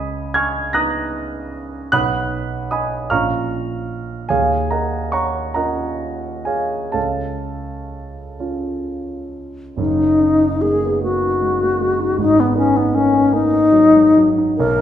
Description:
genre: classical, impressionist duo for alto flute and grand piano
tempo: 40-53 BPM (dotted quarters)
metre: 6/8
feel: rubato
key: F# major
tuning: A4 = 439 Hz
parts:
  - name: dark concert grand piano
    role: accompaniment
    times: 0.0-14.8 s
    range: F#1 to A#6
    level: -20 LUFS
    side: right 3 dB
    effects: none
  - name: mellow hollow alto flute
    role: melody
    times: 9.8-14.8 s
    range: B3 to A#4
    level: -13 LUFS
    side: left 3 dB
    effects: none
room: wet recital hall reverb, RT60 1.3 s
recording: minimal, uncompressed stereo recording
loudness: -15 LUFS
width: side -10 dB against mid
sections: 0.0-9.8 A section; 9.8-14.8 B section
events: none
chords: 0.0 C#13; 1.9 B; 3.1 A#m; 4.3 D#m9; 7.0 C#aug; 9.8 F#69; 12.2 G#m9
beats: 0.73 | 1.93 3.10 | 4.29 5.56 | 6.95 8.39 | 9.79 11.02 | 12.19 13.33 | 14.58

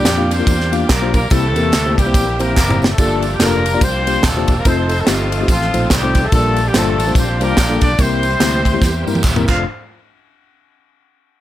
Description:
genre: uptempo gospel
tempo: 144 BPM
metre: 4/4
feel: swing 60% on 8ths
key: unclear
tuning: A4 = 440 Hz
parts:
  - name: clear horn section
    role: melody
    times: 0.0-9.6 s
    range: F3 to F5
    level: -19 LUFS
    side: left 1 dB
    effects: none
  - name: mellow tine electric piano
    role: accompaniment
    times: 0.0-9.6 s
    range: F2 to F5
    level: -20 LUFS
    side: left 3 dB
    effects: medium stereo tremolo
  - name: bright tonewheel organ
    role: sustained chords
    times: 0.0-9.6 s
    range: Eb3 to G5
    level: -25 LUFS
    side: right 2 dB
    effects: slow rotary speaker, chorus vibrato
  - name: fingered electric bass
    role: bass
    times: 0.0-9.6 s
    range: Eb1 to G2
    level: -20 LUFS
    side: equal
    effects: none
  - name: tight funk drum kit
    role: drums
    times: 0.1-9.6 s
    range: crash cymbal, kick drum, ride cymbal, snare drum, toms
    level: -17 LUFS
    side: right 1 dB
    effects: none
  - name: handclaps and tambourine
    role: percussion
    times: 0.1-9.6 s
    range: none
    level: -26 LUFS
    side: right 2 dB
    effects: none
room: light reverb, studio reverb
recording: none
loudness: -13 LUFS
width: side -13 dB against mid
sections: 0.0-3.0 A section; 3.0-9.7 B section; 9.7-11.3 C section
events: drum fill 2.6-3.0, 8.8-9.7; tonewheel organ fill 8.8-9.7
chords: 0.0 Bb6; 1.3 C7; 3.0 Gm7; 3.8 C9sus4; 4.7 F7; 5.5 F7/A; 6.3 Bb6; 8.0 C7; 9.4 F6; 9.7 N.C.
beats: 0.06 0.47 0.89 | 1.31 1.73 2.15 2.56 | 2.98 3.40 3.82 4.23 | 4.65 5.07 5.49 5.90 | 6.32 6.74 7.16 7.57 | 7.99 8.41 8.82 9.24

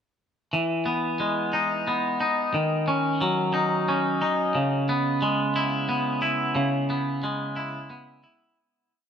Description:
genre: post-rock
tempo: 90 BPM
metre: 3/4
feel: straight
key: C# minor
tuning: A4 = 440 Hz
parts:
  - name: twangy electric guitar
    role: solo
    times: 0.5-8.6 s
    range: C#3 to E4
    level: -23 LUFS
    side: equal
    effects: spring reverb, analog delay
room: light reverb, digital ambience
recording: dark, warm production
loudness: -23 LUFS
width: side -8 dB against mid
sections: 0.5-8.6 A section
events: fade-out 6.6-8.6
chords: 0.5 Emaj7; 2.5 D#m7; 4.6 C#m7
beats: | 0.53 1.20 1.87 | 2.54 3.21 3.88 | 4.55 5.22 5.89 | 6.57 7.24 7.91

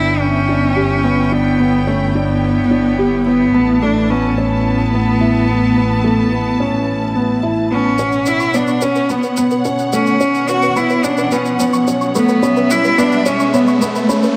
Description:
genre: piano and strings electronica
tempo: 108 BPM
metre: 4/4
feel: straight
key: B minor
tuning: A4 = 441 Hz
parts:
  - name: rich cello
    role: melody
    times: 0.0-13.8 s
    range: A3 to F#4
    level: -19 LUFS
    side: equal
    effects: none
  - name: dark chamber string section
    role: sustained chords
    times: 0.0-14.4 s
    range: B2 to A5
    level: -24 LUFS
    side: equal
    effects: none
  - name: felt-muted upright piano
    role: riff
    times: 0.0-14.3 s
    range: A3 to G4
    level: -20 LUFS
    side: equal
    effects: delay
  - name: dark chamber double bass section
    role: bass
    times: 0.0-8.0 s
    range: G1 to A1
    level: -22 LUFS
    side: equal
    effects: tube saturation
  - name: soft round pluck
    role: arpeggios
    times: 8.0-14.3 s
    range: B4 to F#6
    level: -26 LUFS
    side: equal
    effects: chorus, delay
  - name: shaker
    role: drums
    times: 8.0-14.3 s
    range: none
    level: -31 LUFS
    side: equal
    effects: none
  - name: riser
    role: sound effects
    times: 10.1-14.4 s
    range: none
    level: -25 LUFS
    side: equal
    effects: none
room: moderate echo chamber reverb, RT60 2.3 s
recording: none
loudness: -15 LUFS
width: mono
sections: 0.0-8.0 A section; 8.0-14.4 B section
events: build-up 8.0-14.4; filter sweep on synth arpeggio sound 8.0-14.4; riser 10.5-14.4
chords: 0.0 G6; 3.5 Asus2; 8.0 Bsus2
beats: 0.21 0.77 | 1.32 1.88 2.43 2.99 | 3.54 4.10 4.66 5.21 | 5.77 6.32 6.88 7.43 | 7.99 8.54 9.10 9.65 | 10.21 10.77 11.32 11.88 | 12.43 12.99 13.54 14.10

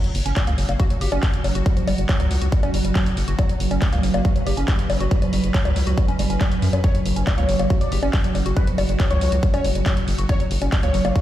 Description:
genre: psychedelic trance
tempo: 139 BPM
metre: 4/4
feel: straight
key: unclear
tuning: A4 = 443 Hz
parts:
  - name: evolving wavetable pad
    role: sustained chords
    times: 0.6-11.2 s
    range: F#3 to B4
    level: -27 LUFS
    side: right 3 dB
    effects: ensemble chorus, built-in reverb, phaser, sidechain pumping
  - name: woody wave-folded pluck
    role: riff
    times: 0.0-11.2 s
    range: E#3 to G4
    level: -28 LUFS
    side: moving between left 4 dB and right 3 dB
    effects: chorus, auto-pan, sidechain pumping, dub echo
  - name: techno drum kit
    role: drums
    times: 0.0-11.2 s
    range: bongos, handclaps, hi-hat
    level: -28 LUFS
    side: left 3 dB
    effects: none
  - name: round analog bass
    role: bass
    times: 0.1-11.1 s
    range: F#1 to F#2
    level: -21 LUFS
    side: equal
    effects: none
  - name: electronic kick drum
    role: drums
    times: 0.4-11.2 s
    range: none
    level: -20 LUFS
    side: equal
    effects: none
  - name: wide unison lead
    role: melody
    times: 6.8-11.0 s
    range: B4 to D5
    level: -29 LUFS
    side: left 2 dB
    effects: phaser, sidechain pumping, dub echo
  - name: riser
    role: sound effects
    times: 10.9-11.2 s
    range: none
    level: -44 LUFS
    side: right 1 dB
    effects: none
room: little or no reverb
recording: played on a big sound system in a bare room, large studio reverb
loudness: -18 LUFS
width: side -13 dB against mid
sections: 0.0-11.2 A section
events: none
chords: 0.0 F#5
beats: 0.36 0.80 1.23 | 1.66 2.09 2.52 2.95 | 3.39 3.82 4.25 4.68 | 5.11 5.54 5.98 6.41 | 6.84 7.27 7.70 8.13 | 8.57 9.00 9.43 9.86 | 10.29 10.72 11.16

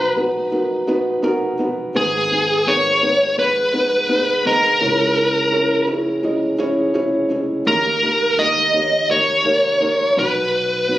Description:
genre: pop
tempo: 84 BPM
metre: 4/4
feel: straight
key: G# minor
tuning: A4 = 440 Hz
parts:
  - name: smooth overdriven lead guitar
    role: melody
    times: 0.0-11.0 s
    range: G#4 to D#5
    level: -16 LUFS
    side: equal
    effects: none
  - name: felt-muted upright piano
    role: accompaniment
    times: 0.0-11.0 s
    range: G#1 to A#5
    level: -20 LUFS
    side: equal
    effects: none
room: moderate studio ambience, RT60 0.5 s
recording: recorded on a phone in the room, studio reverb, compression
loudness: -15 LUFS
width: side -14 dB against mid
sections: 0.0-11.0 A section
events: none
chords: 0.0 B; 2.0 G#m; 4.8 C#m; 7.7 D#; 10.2 B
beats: 0.52 1.24 | 1.95 2.67 3.38 4.10 | 4.81 5.53 6.24 6.96 | 7.67 8.39 9.10 9.82 | 10.53

